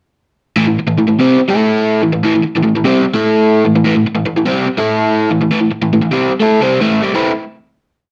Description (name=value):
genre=rock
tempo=146 BPM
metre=4/4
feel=straight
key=A minor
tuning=A4 = 435 Hz
part: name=overdriven electric guitar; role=solo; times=0.6-7.3 s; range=A2 to A4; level=-13 LUFS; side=equal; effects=slapback echo
room=wet small room reverb, RT60 0.5 s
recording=none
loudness=-13 LUFS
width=mono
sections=0.6-7.1 riff; 7.1-8.1 final chord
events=none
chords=0.6 Am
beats=| 0.58 0.99 1.40 1.81 | 2.22 2.63 3.04 3.45 | 3.85 4.26 4.67 5.08 | 5.49 5.90 6.31 6.72 | 7.13